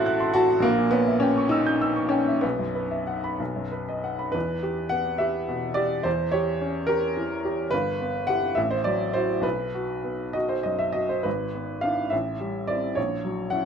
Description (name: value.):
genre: classical, romantic character piece for solo piano.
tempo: 62-74 BPM (dotted quarters).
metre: 6/8.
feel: rubato.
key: E minor.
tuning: A4 = 441 Hz.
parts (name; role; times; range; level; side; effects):
clear upright piano; solo; 0.0-13.7 s; G1 to A6; -23 LUFS; equal; none.
room: moderate large studio reverb, RT60 0.9 s.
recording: none.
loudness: -23 LUFS.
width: side -7 dB against mid.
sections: 0.0-4.3 A section; 4.3-13.7 B section.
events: none.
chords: 0.0 F#dim/A; 0.6 A#dim7; 2.4 Bsus4; 3.4 B; 4.3 Em; 6.1 Edim7; 7.7 Em/G; 8.6 Am6; 9.4 B5; 11.3 E7/G#; 12.1 Am7; 13.0 F#7/A#.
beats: | 0.63 1.51 | 2.43 3.39 | 4.34 5.20 | 6.06 6.89 | 7.72 8.56 | 9.44 10.34 | 11.25 12.12 | 12.97.